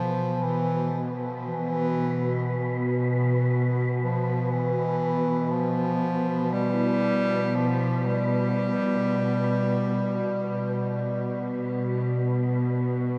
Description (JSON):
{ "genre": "dark ambient drone", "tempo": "free time", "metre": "none", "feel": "none", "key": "E phrygian", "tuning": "A4 = 440 Hz", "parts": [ { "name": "warm bass clarinet", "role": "melody", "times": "0.0-12.1 s", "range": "E3 to G3", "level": "-30 LUFS", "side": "equal", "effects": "delay" }, { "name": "gamelan-type bossed gongs", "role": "arpeggios", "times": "0.0-12.8 s", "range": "E4", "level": "-44 LUFS", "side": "equal", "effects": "none" }, { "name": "bowed-like drone", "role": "drone", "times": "0.0-13.2 s", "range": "B2", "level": "-28 LUFS", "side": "equal", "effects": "built-in reverb" }, { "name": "wind-like tuned noise texture", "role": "texture", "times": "0.0-13.2 s", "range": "G4 to B4", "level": "-38 LUFS", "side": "equal", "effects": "built-in reverb" } ], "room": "wet huge ambient reverb, RT60 8.1 s", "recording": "none", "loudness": "-26 LUFS", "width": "mono", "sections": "0.0-13.2 A section", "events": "none", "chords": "0.0 Em" }